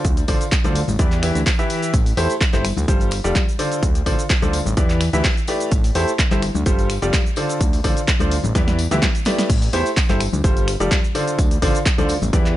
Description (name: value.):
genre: piano house.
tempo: 127 BPM.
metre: 4/4.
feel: swing 53% on 16ths.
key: D dorian.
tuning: A4 = 440 Hz.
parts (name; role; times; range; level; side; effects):
bright grand piano; riff; 0.0-12.6 s; D3 to E5; -22 LUFS; equal; sidechain pumping, ping-pong delay.
fat analog bass; bass; 0.0-12.6 s; F1 to E2; -22 LUFS; equal; sidechain pumping.
electronic kick drum; drums; 0.0-12.4 s; none; -19 LUFS; equal; overdrive.
punchy analog drum machine; drums; 0.0-12.5 s; crash cymbal, finger snaps, handclaps, hi-hat, shaker, snare drum; -25 LUFS; equal; none.
tambourine and congas; percussion; 0.0-12.5 s; none; -30 LUFS; left 5 dB; none.
room: little or no reverb.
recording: nothing above 10.7 kHz.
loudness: -16 LUFS.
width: side -14 dB against mid.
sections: 0.0-12.6 A section.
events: drum fill 8.6-9.5.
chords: 0.0 Dm7; 1.0 Em7; 1.9 Am7; 2.6 G9sus4; 3.6 Dm7; 4.8 Em7; 5.7 Am7; 6.4 G9sus4; 7.4 Dm7; 8.6 Em7; 9.5 Am7; 10.2 G9sus4; 11.1 Dm7.